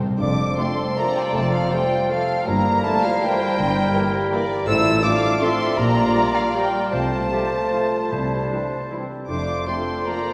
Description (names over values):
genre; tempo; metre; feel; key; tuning
classical, orchestral ballroom waltz; 143-176 BPM; 3/4; rubato; F major; A4 = 439 Hz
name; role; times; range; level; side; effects
muted symphonic violin section; second line; 0.0-10.3 s; F4 to F5; -32 LUFS; equal; none
timpani; percussion; 0.0-0.7, 6.9-8.7 s; F2 to C3; -32 LUFS; equal; none
muted chamber violin section; melody; 0.2-10.3 s; F5 to E6; -29 LUFS; equal; none
bright concert flute; second line; 0.2-10.3 s; F5 to E6; -30 LUFS; equal; none
clear clarinet; second line; 0.2-10.3 s; C4 to G4; -34 LUFS; equal; none
clear oboe; second line; 0.2-10.3 s; A4 to C5; -34 LUFS; equal; none
dark bassoon; accompaniment; 0.2-10.3 s; F3 to A3; -30 LUFS; equal; none
mellow French horn section; sustained chords; 0.2-10.3 s; F3 to E4; -28 LUFS; equal; none
muted chamber cello section; bass; 0.2-9.6 s; F2 to C3; -31 LUFS; equal; none
muted symphonic double bass section; bass; 0.2-9.6 s; F1 to C2; -32 LUFS; equal; none
muted symphonic viola section; accompaniment; 0.6-10.2 s; F3 to F4; -38 LUFS; equal; none
clear trombone section; sustained chords; 0.6-10.2 s; E3 to Bb3; -35 LUFS; equal; none
room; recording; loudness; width
wet church reverb, RT60 3.5 s; none; -21 LUFS; mono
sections
0.2-10.3 A section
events
timpani fill 0.0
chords
0.2 F; 2.5 Edim/G; 4.7 F/A; 5.8 Gm7/Bb; 6.9 F/C; 8.1 C; 9.3 F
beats
| 0.20 0.57 0.97 | 1.34 1.71 2.10 | 2.47 2.84 3.23 | 3.58 3.94 4.32 | 4.67 5.03 5.41 | 5.77 6.14 6.54 | 6.92 7.32 7.73 | 8.11 8.50 8.90 | 9.29 9.67 10.06